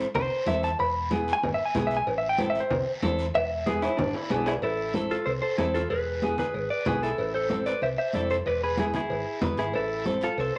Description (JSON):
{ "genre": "latin, cumbia", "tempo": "188 BPM", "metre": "4/4", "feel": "straight", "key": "A harmonic minor", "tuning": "A4 = 440 Hz", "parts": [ { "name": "nylon-string guitar", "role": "accompaniment", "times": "0.0-10.3 s", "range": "B3 to B4", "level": "-32 LUFS", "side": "equal", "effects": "none" }, { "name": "hollow-body short-scale fingered electric bass", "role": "bass", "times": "0.1-10.5 s", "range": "E1 to E2", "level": "-37 LUFS", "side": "equal", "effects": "none" }, { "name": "congas", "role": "percussion", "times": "0.1-10.5 s", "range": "none", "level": "-35 LUFS", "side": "equal", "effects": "none" }, { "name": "cowbell and timbales", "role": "percussion", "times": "0.1-10.5 s", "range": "none", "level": "-36 LUFS", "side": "equal", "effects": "none" }, { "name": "direct-recorded clean electric guitar", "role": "melody", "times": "0.2-10.6 s", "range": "D4 to B5", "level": "-30 LUFS", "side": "equal", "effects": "spring reverb" }, { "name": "guiro", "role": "percussion", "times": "0.2-10.6 s", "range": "none", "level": "-46 LUFS", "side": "equal", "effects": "none" } ], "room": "wet studio ambience, RT60 0.5 s", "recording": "none", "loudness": "-27 LUFS", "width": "mono", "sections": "0.0-4.6 A section; 4.6-10.6 B section", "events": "clean electric guitar solo 0.0-4.6; drum fill 3.8-4.6", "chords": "0.0 Am; 0.8 E; 2.1 Am; 3.3 E; 4.6 Am; 5.9 E; 7.2 Am; 8.5 E; 9.7 Am" }